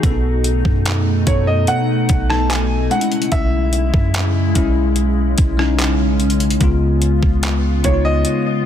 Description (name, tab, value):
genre	contemporary R&B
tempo	73 BPM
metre	4/4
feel	straight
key	unclear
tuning	A4 = 440 Hz
part	bell-like tine electric piano	accompaniment	0.0-8.7 s	B2 to A4	-20 LUFS	left 4 dB	analog chorus
part	glassy FM pad	sustained chords	0.0-8.7 s	B2 to E#4	-23 LUFS	right 1 dB	ensemble chorus, built-in reverb
part	clean 808-style bass	bass	0.0-8.2 s	B1 to F#2	-18 LUFS	right 1 dB	none
part	detuned 8-bit digital drum machine	drums	0.0-8.4 s	handclaps, hi-hat, kick drum, rim click	-19 LUFS	equal	overdrive, soft clipping on snare
part	clear grand piano	melody	1.3-8.7 s	C#5 to A5	-22 LUFS	right 2 dB	ping-pong delay
room	little or no reverb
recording	dense, heavily limited modern master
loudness	-14 LUFS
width	side -10 dB against mid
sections	0.0-8.7 A section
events	none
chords	0.0 B7; 2.9 E6/B; 6.6 C#7